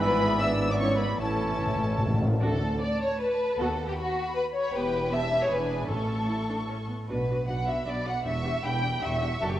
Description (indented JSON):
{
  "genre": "quick classical-period movement for symphony orchestra",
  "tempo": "155 BPM",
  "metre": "3/4",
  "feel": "rubato",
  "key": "unclear",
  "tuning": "A4 = 440 Hz",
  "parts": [
    { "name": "rich studio violin section", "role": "melody", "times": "0.0-9.6 s", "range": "F#5 to E6", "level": "-37 LUFS", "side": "left 2 dB", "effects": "none" },
    { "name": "clear oboe", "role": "second line", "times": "0.0-2.2 s", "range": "C#5 to E5", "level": "-36 LUFS", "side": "right 1 dB", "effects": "none" },
    { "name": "dark clarinet", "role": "second line", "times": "0.0-2.2 s", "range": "C#5 to D5", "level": "-38 LUFS", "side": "left 2 dB", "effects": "none" },
    { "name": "mellow hollow silver concert flute", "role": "second line", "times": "0.0-2.2 s", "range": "A5 to E6", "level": "-34 LUFS", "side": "right 1 dB", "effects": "none" },
    { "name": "warm studio violin section", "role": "second line", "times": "0.0-9.6 s", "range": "F#4 to G5", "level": "-29 LUFS", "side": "left 1 dB", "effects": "none" },
    { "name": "mellow bassoon", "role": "accompaniment", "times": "0.0-2.2 s", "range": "E3", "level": "-34 LUFS", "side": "left 1 dB", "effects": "none" },
    { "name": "rich studio viola section", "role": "accompaniment", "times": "0.0-9.5 s", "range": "E3 to A4", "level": "-35 LUFS", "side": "right 1 dB", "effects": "none" },
    { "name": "mellow French horn section", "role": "sustained chords", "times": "0.0-2.2 s", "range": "A3 to E4", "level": "-36 LUFS", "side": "left 2 dB", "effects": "none" },
    { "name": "dark studio cello section", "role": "bass", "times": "0.0-9.6 s", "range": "D2 to B2", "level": "-33 LUFS", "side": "right 2 dB", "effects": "none" },
    { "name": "rich studio double bass section", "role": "bass", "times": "0.0-9.6 s", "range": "E1 to D#2", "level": "-34 LUFS", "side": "right 2 dB", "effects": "none" },
    { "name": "timpani", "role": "percussion", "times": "1.2-2.4, 5.9-6.5 s", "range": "A2", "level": "-29 LUFS", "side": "left 1 dB", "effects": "none" }
  ],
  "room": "wet scoring stage reverb, RT60 1.8 s",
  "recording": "worn, warbling old tape, cassette tape, warbly pitch drift",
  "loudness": "-25 LUFS",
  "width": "side -13 dB against mid",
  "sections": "0.0-2.4 A section; 2.4-9.6 B section",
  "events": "timpani fill 1.2-2.4",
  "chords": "0.0 E7/G#; 1.2 A; 2.4 D; 3.6 B/D#; 4.7 Em; 5.5 E7; 5.9 A; 7.1 Bm; 8.3 Em7"
}